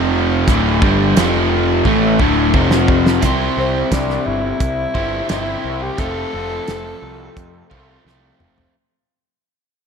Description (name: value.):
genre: classic rock.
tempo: 87 BPM.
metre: 4/4.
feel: straight.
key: unclear.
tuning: A4 = 441 Hz.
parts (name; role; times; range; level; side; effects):
overdriven electric guitar; riff; 0.0-8.7 s; D2 to C5; -19 LUFS; equal; slapback echo.
thick fuzz guitar; riff; 0.0-3.2 s; D2 to A3; -19 LUFS; left 1 dB; distortion.
fuzz picked electric bass; bass; 0.0-8.7 s; D1 to F2; -21 LUFS; equal; overdrive.
damped 70s drum kit; drums; 0.5-8.7 s; hi-hat, kick drum, snare drum, toms; -18 LUFS; equal; none.
raspy tenor saxophone; melody; 3.6-8.1 s; C4 to A4; -24 LUFS; left 2 dB; slapback echo.
room: moderate lush hall reverb, RT60 1.7 s, studio ambience.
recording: big arena sound.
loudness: -14 LUFS.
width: side -6 dB against mid.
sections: 0.0-3.2 A section; 3.2-8.7 B section.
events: drum fill 1.9-3.2, 8.1-8.7; fade-out 3.2-8.7.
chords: 0.5 D5; 1.2 F5; 1.9 D5; 2.5 F5; 3.2 C; 6.0 F.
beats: | 0.48 1.17 1.85 2.54 | 3.23 3.92 4.60 5.29 | 5.98 6.67 7.36 8.05.